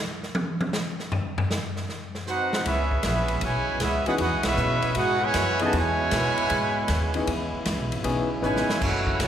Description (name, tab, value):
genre	jazz, big band swing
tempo	156 BPM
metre	4/4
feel	swing 66% on 8ths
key	C# minor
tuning	A4 = 440 Hz
part	swinging big-band drum kit	drums	0.2-9.3 s	crash cymbal, hi-hat, kick drum, ride cymbal, snare drum, toms	-29 LUFS	left 1 dB	none
part	bright trumpet section	melody	2.3-9.3 s	C#4 to A5	-26 LUFS	right 1 dB	none
part	bright trombone section	second line	2.3-9.3 s	B2 to Gb4	-31 LUFS	right 3 dB	none
part	bright trombone section	sustained chords	2.6-9.3 s	C#3 to E4	-34 LUFS	right 1 dB	none
part	upright bass	bass	2.7-9.3 s	F#1 to B2	-28 LUFS	equal	none
part	warm grand piano	accompaniment	4.1-8.7 s	E3 to B4	-29 LUFS	left 3 dB	none
room	wet concert hall reverb, RT60 2.3 s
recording	recorded in a church or concert hall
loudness	-22 LUFS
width	side -9 dB against mid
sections	0.0-2.7 A section; 2.7-9.3 B section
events	drum solo 0.0-2.7; band accent 4.4; drum fill 8.4-8.8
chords	0.0 N.C.; 1.1 Cdim; 2.7 C#m7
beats	0.35 0.73 | 1.12 1.50 1.89 2.27 | 2.66 3.04 3.43 3.81 | 4.20 4.58 4.96 5.35 | 5.73 6.12 6.50 6.89 | 7.27 7.66 8.04 8.42 | 8.81 9.19